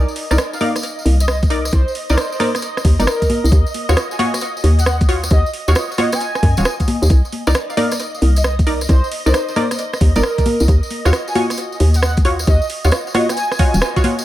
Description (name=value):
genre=UK garage, two-step garage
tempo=134 BPM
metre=4/4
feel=swing 66% on 16ths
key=unclear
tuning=A4 = 441 Hz
part: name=soft string machine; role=sustained chords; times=0.1-14.2 s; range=Eb5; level=-30 LUFS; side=right 1 dB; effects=phaser, ensemble chorus, sidechain pumping
part: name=punchy chord stab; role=stabs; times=0.0-14.2 s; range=Eb4 to D5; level=-22 LUFS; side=equal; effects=chorus, tape echo
part: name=hollow knocking FM bass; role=bass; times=0.0-13.8 s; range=Eb1 to Gb2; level=-14 LUFS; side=equal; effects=tube saturation
part: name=tambourine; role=percussion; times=0.1-14.2 s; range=none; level=-29 LUFS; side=equal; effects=none
part: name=garage drum kit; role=drums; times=0.2-14.2 s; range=congas, hi-hat, rim click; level=-22 LUFS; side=equal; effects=overdrive, analog delay
part: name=breathy flute-like synth lead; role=melody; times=0.5-13.9 s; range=Bb4 to Ab5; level=-24 LUFS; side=equal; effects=analog chorus, cassette tape, analog delay
part: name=electronic kick drum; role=drums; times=1.4-14.0 s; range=none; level=-15 LUFS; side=equal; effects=overdrive
room=light reverb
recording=echo-heavy mix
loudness=-14 LUFS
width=side -14 dB against mid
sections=0.0-14.2 A section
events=drop 0.0-14.2; band accent 13.8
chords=0.0 Cm9; 3.5 Ebm9; 7.1 Cm9; 10.7 Ebm9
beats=0.38 0.83 1.28 | 1.73 2.17 2.62 3.07 | 3.52 3.97 4.41 4.86 | 5.31 5.76 6.21 6.65 | 7.10 7.55 8.00 8.44 | 8.89 9.34 9.79 10.23 | 10.68 11.13 11.58 12.03 | 12.47 12.92 13.37 13.82